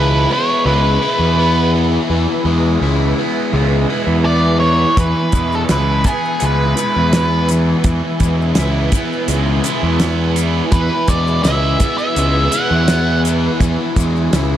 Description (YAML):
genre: psychedelic rock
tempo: 84 BPM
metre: 4/4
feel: straight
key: E major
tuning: A4 = 440 Hz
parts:
  - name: octave-fuzz lead guitar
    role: melody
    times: 0.0-13.2 s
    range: G#4 to F#5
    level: -19 LUFS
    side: equal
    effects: distortion, analog delay
  - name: soft string machine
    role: sustained chords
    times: 0.0-14.6 s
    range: B4 to G#5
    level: -27 LUFS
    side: right 4 dB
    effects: ensemble chorus
  - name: cranked stack guitar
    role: riff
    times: 0.0-14.6 s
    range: E3 to E4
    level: -19 LUFS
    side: left 1 dB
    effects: overdrive, phaser, analog delay
  - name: fuzz picked electric bass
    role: bass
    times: 0.0-14.6 s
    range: C#2 to E2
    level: -16 LUFS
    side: equal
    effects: overdrive
  - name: damped 70s drum kit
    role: drums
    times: 5.0-14.5 s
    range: hi-hat, kick drum, snare drum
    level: -16 LUFS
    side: equal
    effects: none
  - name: maracas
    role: percussion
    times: 5.0-14.5 s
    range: none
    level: -33 LUFS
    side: left 14 dB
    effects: analog delay
room: small room ambience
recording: echo-heavy mix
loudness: -13 LUFS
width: side -11 dB against mid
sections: 0.0-14.6 A section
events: none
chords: 0.0 E